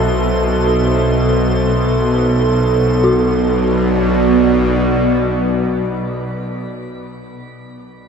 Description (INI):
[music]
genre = dark ambient drone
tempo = free time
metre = none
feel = none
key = B phrygian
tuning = A4 = 441 Hz
[part]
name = dark analog pad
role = sustained chords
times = 0.0-6.6 s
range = B2 to E5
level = -18 LUFS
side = right 2 dB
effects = chorus, phaser, shimmer reverb
[part]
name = dark detuned synth bell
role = arpeggios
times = 0.0-8.1 s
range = E4 to F#4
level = -26 LUFS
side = left 2 dB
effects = none
[part]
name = bowed-like drone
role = drone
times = 0.0-6.2 s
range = B1 to B2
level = -16 LUFS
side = equal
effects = built-in reverb
[part]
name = icy glass pad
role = texture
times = 0.0-3.1 s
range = C6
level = -31 LUFS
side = equal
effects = chorus, built-in reverb, shimmer reverb
[sound]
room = wet cathedral reverb, RT60 5.3 s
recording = dark, warm production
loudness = -13 LUFS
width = side -6 dB against mid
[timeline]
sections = 0.0-3.0 A section; 3.0-7.2 B section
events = none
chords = 0.0 Am/B; 3.0 Bm